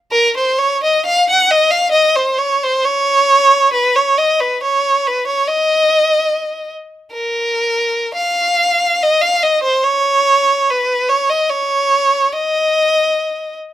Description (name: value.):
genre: classical, free, expressive piece for unaccompanied violin.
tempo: 56-78 BPM.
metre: 4/4.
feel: rubato.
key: unclear.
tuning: A4 = 440 Hz.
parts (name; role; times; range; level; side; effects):
rich violin; solo; 0.1-13.6 s; Bb4 to Gb5; -12 LUFS; equal; none.
room: light reverb.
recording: none.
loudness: -12 LUFS.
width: side -12 dB against mid.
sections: 0.1-13.7 A section.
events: none.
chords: none.